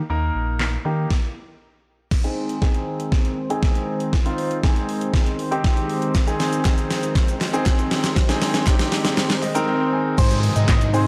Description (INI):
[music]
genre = dance-pop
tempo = 119 BPM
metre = 4/4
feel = straight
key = Ab major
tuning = A4 = 440 Hz
[part]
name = warm concert grand piano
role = accompaniment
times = 0.1-11.1 s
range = Ab3 to Ab5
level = -28 LUFS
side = equal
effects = sidechain pumping, low-pass filter
[part]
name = sub bass with octave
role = bass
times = 0.1-1.1, 10.2-11.1 s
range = Bb1 to Eb3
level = -24 LUFS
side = equal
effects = sidechain pumping
[part]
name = pop drum kit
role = drums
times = 0.6-11.1 s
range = crash cymbal, handclaps, hi-hat, kick drum, shaker, snare drum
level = -22 LUFS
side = equal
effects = overdrive
[part]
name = chorused pulse-width pad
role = sustained chords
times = 2.1-11.1 s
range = C3 to C5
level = -29 LUFS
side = equal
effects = sidechain pumping, low-pass filter
[part]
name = riser and downlifter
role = sound effects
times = 7.4-11.1 s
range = none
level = -36 LUFS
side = equal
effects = none
[part]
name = group handclap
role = percussion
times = 6.6-9.5 s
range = none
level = -37 LUFS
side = equal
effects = none
[part]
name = octave-doubled lead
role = melody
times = 10.2-11.0 s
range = C5 to Eb5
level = -28 LUFS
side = equal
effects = chorus
[sound]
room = little or no reverb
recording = dry, gritty hardware recording, cassette tape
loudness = -21 LUFS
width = mono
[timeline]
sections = 0.0-2.1 A section; 2.1-10.2 B section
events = stop 1.1-2.1; build-up 2.1-10.2; drum fill 2.1-9.7; filter sweep 2.1-10.2; grand piano fill 9.2-10.2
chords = 0.0 Eb5; 2.1 Ab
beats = | 0.10 0.60 1.11 1.61 | 2.11 2.62 3.12 3.63 | 4.13 4.63 5.14 5.64 | 6.15 6.65 7.16 7.66 | 8.16 8.67 9.17 9.68 | 10.18 10.69